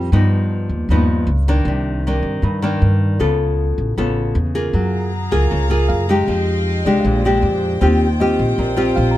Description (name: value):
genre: bossa nova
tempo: 156 BPM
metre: 4/4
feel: straight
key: Eb major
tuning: A4 = 439 Hz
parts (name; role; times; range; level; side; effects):
- nylon-string guitar; accompaniment; 0.0-9.2 s; G2 to A4; -18 LUFS; left 1 dB; none
- tine electric piano; accompaniment; 0.0-0.2, 5.9-9.2 s; D5 to Bb5; -31 LUFS; right 2 dB; medium tremolo
- upright bass; bass; 0.0-9.2 s; A1 to G2; -18 LUFS; equal; none
- clear studio string section; sustained chords; 4.7-9.2 s; D4 to Bb5; -27 LUFS; equal; none
room: little or no reverb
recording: close, detailed microphones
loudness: -15 LUFS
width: side -14 dB against mid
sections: 0.0-9.2 A section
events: none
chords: 0.1 G7alt; 1.7 Cm9; 3.2 Db7alt; 4.7 Gbmaj9; 6.3 Fm9; 7.1 Bb13; 7.8 Eb69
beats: | 0.14 0.52 0.90 1.29 | 1.67 2.06 2.44 2.82 | 3.21 3.59 3.98 4.36 | 4.75 5.13 5.51 5.90 | 6.28 6.67 7.05 7.44 | 7.82 8.21 8.59 8.97